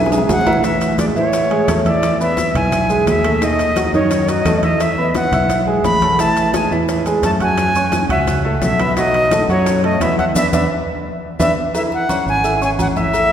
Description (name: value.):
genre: latin, salsa.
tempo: 173 BPM.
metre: 4/4.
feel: straight.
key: A major.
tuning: A4 = 440 Hz.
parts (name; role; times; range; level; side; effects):
warm grand piano; accompaniment; 0.0-13.3 s; D#3 to F#6; -19 LUFS; right 2 dB; none.
fingered electric bass; bass; 0.0-13.3 s; G#1 to A2; -20 LUFS; equal; none.
bongos and cowbell; percussion; 0.1-13.3 s; none; -27 LUFS; left 4 dB; none.
maracas; percussion; 0.1-13.3 s; none; -33 LUFS; left 5 dB; none.
timbales and agogo bells; percussion; 0.1-13.3 s; none; -27 LUFS; right 3 dB; none.
bright reedy concert flute; melody; 0.3-13.3 s; C#5 to B5; -18 LUFS; left 1 dB; none.
congas; percussion; 0.3-13.3 s; none; -26 LUFS; left 1 dB; none.
room: wet church reverb, RT60 2.7 s.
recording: recorded in a church or concert hall.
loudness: -13 LUFS.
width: side -9 dB against mid.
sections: 0.6-11.7 A section; 11.7-13.3 B section.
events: drum fill 0.0-0.6, 10.7-11.7; band accent 10.4-11.7.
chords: 0.0 E; 0.6 Amaj7; 2.0 E; 3.4 F#m6; 4.8 Eadd9; 6.2 A5; 7.6 F#m9; 9.0 B7; 10.4 E5; 11.7 C#m.